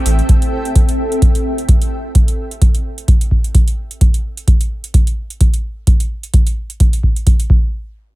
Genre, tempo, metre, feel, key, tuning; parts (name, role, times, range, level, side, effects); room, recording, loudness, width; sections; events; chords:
acid house; 129 BPM; 4/4; swing 56% on 16ths
electronic hi-hat; drums; 0.1-7.5 s; -26 LUFS; right 4 dB
electronic kick drum; drums; 0.3-7.6 s; -12 LUFS; equal
little or no reverb; -12 LUFS; side -18 dB against mid
0.0-7.7 A section